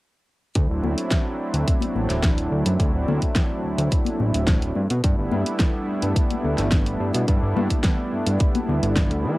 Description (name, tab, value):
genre	nu-disco, nu disco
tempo	107 BPM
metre	4/4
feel	straight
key	D mixolydian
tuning	A4 = 441 Hz
part	warm analog pad	accompaniment	0.5-9.4 s	F#3 to E4	-26 LUFS	right 1 dB	chorus, tremolo, sidechain pumping, cassette tape, tape echo
part	fat analog bass	bass	0.6-9.4 s	D1 to E3	-23 LUFS	equal	none
part	electronic kick drum	drums	0.6-9.1 s	none	-21 LUFS	equal	cassette tape
part	pop drum kit	drums	0.6-9.2 s	hi-hat, snare drum	-26 LUFS	equal	cassette tape
part	congas	percussion	0.8-9.4 s	none	-29 LUFS	left 7 dB	none
room	light reverb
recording	home recording on cassette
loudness	-20 LUFS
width	side -19 dB against mid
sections	0.6-9.4 A section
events	none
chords	0.6 D7; 4.8 G69